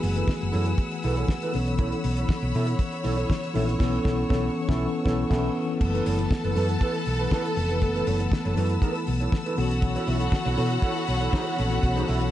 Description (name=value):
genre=disco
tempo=119 BPM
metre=4/4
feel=straight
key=F# minor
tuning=A4 = 440 Hz
part: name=mellow electric guitar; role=accompaniment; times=0.0-12.3 s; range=E4 to E5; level=-32 LUFS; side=right 4 dB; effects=none
part: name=mellow tine electric piano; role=accompaniment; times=0.0-12.3 s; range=E3 to A4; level=-29 LUFS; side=left 3 dB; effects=medium stereo tremolo
part: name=clear studio string section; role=sustained chords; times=0.0-12.3 s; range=B4 to E6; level=-35 LUFS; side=left 3 dB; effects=none
part: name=hollow-body short-scale fingered electric bass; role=bass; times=0.0-12.3 s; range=E#1 to B2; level=-26 LUFS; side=equal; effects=none
part: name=damped 70s drum kit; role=drums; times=0.0-12.3 s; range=crash cymbal, hi-hat, kick drum, snare drum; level=-28 LUFS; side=equal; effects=none
part: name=rich studio violin section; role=second line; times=5.8-12.3 s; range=F#4 to A5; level=-31 LUFS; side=equal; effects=none
room=light reverb, small room ambience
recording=dark, warm production, nothing above 10.7 kHz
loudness=-22 LUFS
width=side -13 dB against mid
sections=0.0-5.8 A section; 5.8-12.3 B section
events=band accent 3.8-5.8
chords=0.0 F#m11; 1.5 B9sus4; 5.8 F#m7; 9.6 B9sus4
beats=0.28 0.78 1.28 | 1.79 2.29 2.79 3.30 | 3.80 4.30 4.80 5.31 | 5.81 6.31 6.81 7.32 | 7.82 8.32 8.82 9.32 | 9.83 10.33 10.83 11.33 | 11.83